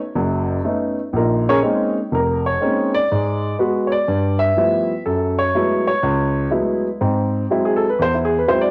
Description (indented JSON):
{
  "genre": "solo jazz",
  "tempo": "122 BPM",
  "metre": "4/4",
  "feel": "swing 67% on 8ths",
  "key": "unclear",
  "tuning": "A4 = 439 Hz",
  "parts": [
    { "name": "warm grand piano", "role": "solo", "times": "0.2-8.7 s", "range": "F1 to E5", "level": "-19 LUFS", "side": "equal", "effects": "none" }
  ],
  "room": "moderate spring reverb, RT60 1.4 s, small room reverb",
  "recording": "home recording on cassette, nothing above 11.0 kHz",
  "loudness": "-19 LUFS",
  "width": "mono",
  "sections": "0.0-8.7 A section",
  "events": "grand piano solo 0.0-8.7",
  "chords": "0.0 Cb9; 1.1 Bbm11; 3.1 Abm7b5; 4.1 G13; 5.1 Gbm11; 7.0 Abaug7"
}